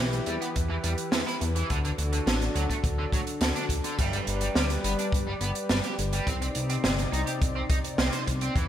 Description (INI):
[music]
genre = synthwave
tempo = 105 BPM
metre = 4/4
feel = straight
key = unclear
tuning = A4 = 440 Hz
[part]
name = warm analog pad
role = sustained chords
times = 0.0-8.7 s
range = C3 to D5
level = -32 LUFS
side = left 1 dB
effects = chorus, sidechain pumping
[part]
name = overdriven electric guitar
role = riff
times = 0.0-8.6 s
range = D3 to C5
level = -34 LUFS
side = right 1 dB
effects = lush chorus, digital delay
[part]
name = chorused synth bass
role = bass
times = 0.0-8.7 s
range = G1 to E2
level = -30 LUFS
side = equal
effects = none
[part]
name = open jazz drum kit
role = drums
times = 0.1-8.7 s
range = crash cymbal, hi-hat, snare drum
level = -30 LUFS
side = right 2 dB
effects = gated reverb
[part]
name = kick drum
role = drums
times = 0.6-8.7 s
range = none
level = -29 LUFS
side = equal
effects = none
[sound]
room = moderate lush hall reverb, RT60 2.5 s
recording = bright 1980s-style digital production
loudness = -25 LUFS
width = side -10 dB against mid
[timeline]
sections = 0.0-8.7 A section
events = none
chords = 0.0 Em; 1.7 D; 4.0 G; 6.3 Cmadd9